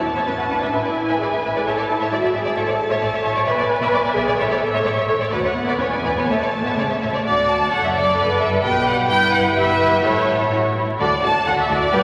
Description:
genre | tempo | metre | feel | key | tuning
quick classical-period movement for string orchestra | 130 BPM | 2/4 | rubato | A major, D major from 7.3 s | A4 = 436 Hz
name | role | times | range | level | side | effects
warm symphonic violin section | melody | 0.0-12.0 s | C#5 to A5 | -23 LUFS | equal | none
warm symphonic viola section | accompaniment | 0.0-12.0 s | G#3 to C#5 | -26 LUFS | equal | none
rich symphonic violin section | second line | 0.2-12.0 s | E4 to F#5 | -24 LUFS | equal | none
rich symphonic cello section | bass | 0.2-12.0 s | D2 to C#3 | -32 LUFS | equal | none
rich symphonic double bass section | bass | 0.3-12.0 s | E1 to D2 | -34 LUFS | equal | none
room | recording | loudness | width
wet church reverb, RT60 3.5 s | vinyl crackle | -19 LUFS | mono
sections
0.0-7.3 A section; 7.3-12.0 B section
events
none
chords
0.3 Bm7/A; 0.7 E/A; 1.7 A5; 2.1 E7/G#; 2.6 A; 3.5 E7/B (rootless); 4.4 A; 5.3 Bm/D; 5.8 E; 6.3 A; 7.3 D; 8.2 G; 9.1 Em/G; 10.0 A; 11.0 D

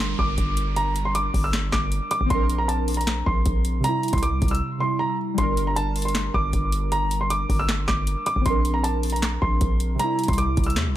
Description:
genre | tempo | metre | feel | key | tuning
hip hop, trap | 156 BPM | 4/4 | half-time | G dorian | A4 = 442 Hz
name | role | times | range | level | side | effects
dark concert grand piano | melody | 0.0-10.9 s | A5 to E6 | -26 LUFS | right 1 dB | ping-pong delay
warbly lo-fi synth keys | accompaniment | 0.0-11.0 s | C3 to Bb4 | -29 LUFS | right 1 dB | chorus
hard-hitting 808-style bass | bass | 0.0-11.0 s | G1 to E2 | -25 LUFS | equal | none
booming analog drum machine | drums | 0.0-10.9 s | handclaps, hi-hat, kick drum, rim click, snare drum | -25 LUFS | equal | none
downlifter | sound effects | 0.0-2.3 s | none | -38 LUFS | right 2 dB | none
room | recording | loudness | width
little or no reverb | none | -20 LUFS | side -13 dB against mid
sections
0.0-11.0 A section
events
break 4.6-5.4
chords
0.0 Gm; 2.3 Bbadd9; 3.8 C; 5.4 Gm; 8.5 Bbadd9; 10.0 C

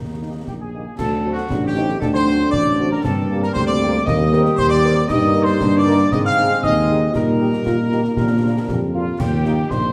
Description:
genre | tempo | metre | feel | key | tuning
military-style march for wind band | 117 BPM | 2/4 | straight | Eb major from 5.1 s | A4 = 440 Hz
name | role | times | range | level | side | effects
mellow trumpet section | melody | 0.0-9.9 s | Eb4 to F5 | -26 LUFS | equal | none
mellow euphonium | second line | 0.0-9.8 s | Bb3 to G4 | -24 LUFS | equal | none
mellow tuba | bass | 0.0-9.9 s | A1 to Bb2 | -22 LUFS | equal | none
mellow French horn section | accompaniment | 0.2-9.5 s | G3 to Bb4 | -32 LUFS | equal | none
mellow hollow wooden piccolo | second line | 0.5-9.9 s | F5 to F6 | -28 LUFS | equal | none
concert snare drum, concert bass drum and clash cymbals | drums | 0.5-9.9 s | none | -30 LUFS | equal | none
mellow trombone section | sustained chords | 1.0-9.5 s | Eb3 to Eb4 | -29 LUFS | equal | none
room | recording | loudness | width
wet recital hall reverb, RT60 1.6 s | recorded in a church or concert hall | -18 LUFS | mono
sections
1.0-9.2 A section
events
none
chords
0.0 Eb; 1.0 D7; 3.0 Gm; 4.1 Cm7/Eb; 5.1 Eb/G; 6.1 Ab; 7.1 Eb/Bb; 8.2 Bb; 9.2 Eb

